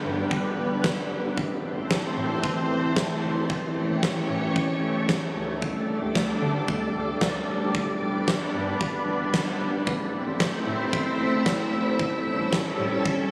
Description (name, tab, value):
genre	synth-pop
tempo	113 BPM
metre	4/4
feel	straight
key	unclear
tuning	A4 = 438 Hz
part	soft string machine	sustained chords	0.0-13.3 s	D3 to E5	-29 LUFS	equal	ensemble chorus
part	rubbery square bass	bass	0.0-13.2 s	F#1 to D3	-37 LUFS	equal	none
part	huge arena drum kit	drums	0.3-13.2 s	kick drum, snare drum	-30 LUFS	equal	none
room	moderate plate reverb, RT60 1.1 s, studio reverb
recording	recorded on a phone in the room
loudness	-26 LUFS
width	mono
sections	0.0-13.3 A section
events	none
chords	0.0 G; 1.4 Am; 3.5 A7; 5.4 Dsus4; 7.7 G; 9.9 Am; 12.0 A7